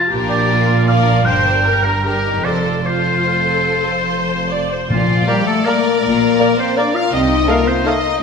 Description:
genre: classical, orchestral ballroom waltz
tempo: 140-178 BPM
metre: 3/4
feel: rubato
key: Bb major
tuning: A4 = 440 Hz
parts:
  - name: warm oboe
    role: second line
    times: 0.0-8.2 s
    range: F4 to A5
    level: -19 LUFS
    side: equal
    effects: none
  - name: rich studio viola section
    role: accompaniment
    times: 0.0-7.9 s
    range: F4 to F5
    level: -22 LUFS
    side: right 1 dB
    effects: none
  - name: rich studio violin section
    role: melody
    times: 0.1-8.2 s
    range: F4 to F5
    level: -24 LUFS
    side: left 4 dB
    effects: none
  - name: rich studio violin section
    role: second line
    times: 0.1-8.2 s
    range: D4 to D5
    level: -25 LUFS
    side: left 2 dB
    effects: none
  - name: rich studio double bass section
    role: bass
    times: 0.1-7.4 s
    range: F1 to C2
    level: -22 LUFS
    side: right 2 dB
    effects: none
  - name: warm studio cello section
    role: bass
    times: 0.1-7.4 s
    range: F2 to C3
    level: -23 LUFS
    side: right 1 dB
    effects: none
  - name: warm French horn section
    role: sustained chords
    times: 4.9-8.2 s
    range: F3 to F4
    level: -16 LUFS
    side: left 6 dB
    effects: none
  - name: timpani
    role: percussion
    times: 4.9-5.4 s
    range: Bb2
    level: -22 LUFS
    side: left 2 dB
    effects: none
  - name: hollow concert flute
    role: second line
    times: 5.3-7.9 s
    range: D5 to F5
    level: -27 LUFS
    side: left 1 dB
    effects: none
  - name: warm bassoon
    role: accompaniment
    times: 5.3-8.0 s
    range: A3 to Bb3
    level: -24 LUFS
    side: equal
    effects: none
room: wet scoring stage reverb, RT60 1.6 s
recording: minimal, uncompressed stereo recording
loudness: -13 LUFS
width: side -5 dB against mid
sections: 0.0-4.9 A section; 4.9-8.2 B section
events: none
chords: 0.1 Bb; 1.3 Gm; 2.4 F; 4.9 Bb; 7.1 F7/C

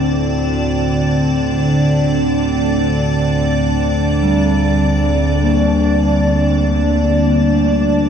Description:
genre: dark ambient drone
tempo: 49 BPM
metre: 4/4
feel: straight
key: unclear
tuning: A4 = 438 Hz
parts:
  - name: dark analog pad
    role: sustained chords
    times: 0.0-8.1 s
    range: D3 to D5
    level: -16 LUFS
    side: right 1 dB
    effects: wide subtle chorus, shimmer reverb
  - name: quartz singing bowl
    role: arpeggios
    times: 0.0-8.1 s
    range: A2 to D4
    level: -20 LUFS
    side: left 2 dB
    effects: tape echo
  - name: analog drone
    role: drone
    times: 0.0-8.1 s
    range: D2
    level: -18 LUFS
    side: left 1 dB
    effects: lush chorus
  - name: icy glass pad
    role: texture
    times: 0.0-8.1 s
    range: D4 to D5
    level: -21 LUFS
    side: right 2 dB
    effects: chorus, built-in reverb, shimmer reverb
room: wet huge ambient reverb, RT60 8.0 s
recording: dark, warm production, nothing above 10.4 kHz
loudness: -13 LUFS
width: side -8 dB against mid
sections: 0.0-8.1 A section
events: none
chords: 0.0 Cadd9/D

